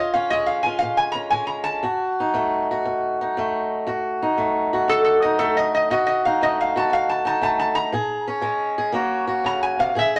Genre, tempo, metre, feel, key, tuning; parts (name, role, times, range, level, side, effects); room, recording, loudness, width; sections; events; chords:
acoustic country blues, solo or duo; 118 BPM; 4/4; swing 67% on 8ths; A4 = 443 Hz
metal-body resonator slide guitar; melody; 0.0-10.2 s; A4 to Bb5; -23 LUFS; equal
fingerpicked swing-style acoustic guitar; accompaniment; 0.0-10.2 s; F2 to Ab4; -24 LUFS; equal
wet studio reverb, RT60 0.8 s; -22 LUFS; mono
0.0-10.2 A section
resonator guitar played with a steel bar solo 0.0-10.2
0.0 Bbm7; 1.8 F7b9; 7.9 Bbm7; 8.9 Ebm7